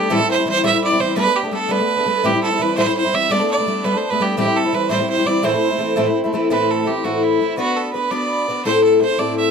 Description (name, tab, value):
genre	celtic folk, Celtic jig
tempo	112 BPM (dotted quarters)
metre	6/8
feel	straight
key	A dorian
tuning	A4 = 440 Hz
part	bright fiddle	melody	0.0-9.5 s	E4 to E5	-19 LUFS	right 4 dB	none
part	fingerpicked twelve-string acoustic guitar	accompaniment	0.0-9.5 s	A2 to B4	-18 LUFS	left 2 dB	none
room	light reverb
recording	close, detailed microphones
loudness	-15 LUFS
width	side -6 dB against mid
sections	0.0-6.5 A section; 6.5-9.5 B section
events	none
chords	0.1 Am7; 1.2 Gadd9; 2.2 Am7; 3.3 Gadd9; 4.4 Am7; 5.4 Am; 7.6 Bm; 8.7 Am